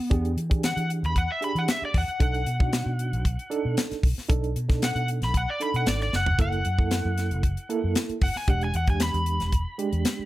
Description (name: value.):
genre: straight-eighth soul blues.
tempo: 115 BPM.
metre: 4/4.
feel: straight.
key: unclear.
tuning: A4 = 440 Hz.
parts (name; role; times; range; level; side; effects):
overdriven slide guitar; melody; 0.0-10.3 s; B3 to B5; -30 LUFS; left 1 dB; plate reverb.
reed electric piano; accompaniment; 0.1-10.3 s; G#3 to A4; -31 LUFS; right 5 dB; tremolo, plate reverb.
vintage muted fingered electric bass; bass; 0.1-10.2 s; E1 to E3; -27 LUFS; equal; none.
tight funk drum kit; drums; 0.1-10.2 s; hi-hat, kick drum, snare drum, toms; -25 LUFS; equal; none.
room: light reverb.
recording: none.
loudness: -23 LUFS.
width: side -16 dB against mid.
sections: 0.0-10.3 A section.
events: electric slide guitar solo 0.0-10.3; drum fill 6.1.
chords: 0.0 E7#9; 2.2 B7#9; 6.4 F#7#9; 8.5 E7#9.